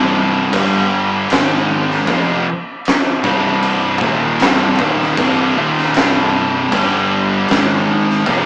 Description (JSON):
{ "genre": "stoner and doom metal", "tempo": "78 BPM", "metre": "4/4", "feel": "straight", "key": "C minor", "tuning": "A4 = 436 Hz", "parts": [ { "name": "overdriven electric guitar", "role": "riff", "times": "0.0-8.5 s", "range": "C2 to Ab3", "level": "-17 LUFS", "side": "equal", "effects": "none" }, { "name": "thick fuzz guitar", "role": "riff", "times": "0.0-8.5 s", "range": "C2 to Ab3", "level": "-21 LUFS", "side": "left 1 dB", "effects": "distortion" }, { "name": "thick fuzz guitar", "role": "riff", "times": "0.0-8.5 s", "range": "C2 to Ab3", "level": "-20 LUFS", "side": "equal", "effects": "distortion" }, { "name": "growling fingered electric bass", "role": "bass", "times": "0.0-8.5 s", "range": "C1 to Ab1", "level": "-26 LUFS", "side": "equal", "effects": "overdrive, tube saturation" }, { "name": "oversized low-tuned drum kit", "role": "drums", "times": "0.5-8.4 s", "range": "crash cymbal, kick drum, snare drum", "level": "-16 LUFS", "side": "equal", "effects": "none" } ], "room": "light reverb", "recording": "rough rehearsal-room recording, small speaker sound", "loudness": "-12 LUFS", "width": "side -24 dB against mid", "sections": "0.0-8.5 A section", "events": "none", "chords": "0.0 C5; 0.5 G5; 1.3 Ab5; 2.1 Cm; 6.7 G5; 7.5 Ab5", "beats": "0.54 1.31 | 2.08 2.85 3.63 4.40 | 5.17 5.94 6.71 7.49 | 8.26" }